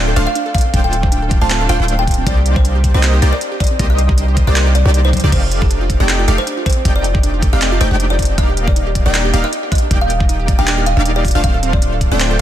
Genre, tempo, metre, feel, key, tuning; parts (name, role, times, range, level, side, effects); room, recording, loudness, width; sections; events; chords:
future bass; 157 BPM; 4/4; swing 55% on 16ths, half-time; A4 = 441 Hz
kalimba; melody; 0.0-12.4 s; A4 to A5; -22 LUFS; left 1 dB; sidechain pumping, tape echo
wide unison pluck; arpeggios; 0.0-12.4 s; D5 to G5; -30 LUFS; equal
wide unison pluck; arpeggios; 0.0-12.4 s; C4 to Eb5; -26 LUFS; right 6 dB; sidechain pumping, digital delay
supersaw stab; riff; 0.0-12.4 s; A3 to G5; -20 LUFS; equal; sidechain pumping, digital delay
long sustained 808-style bass; bass; 0.0-12.4 s; D1 to C2; -15 LUFS; equal; sidechain pumping
trap drum kit; drums; 0.2-12.3 s; crash cymbal, handclaps, hi-hat, toms; -22 LUFS; equal; studio ambience
electronic kick drum; drums; 0.5-12.1 s; -15 LUFS; equal; studio ambience
digital ambience; dense, heavily limited modern master; -12 LUFS; side -12 dB against mid
0.0-12.4 A section
drum fill 5.1
0.0 Dm7; 2.3 Cm9; 5.3 F13; 8.4 Ebmaj9; 11.2 Dm7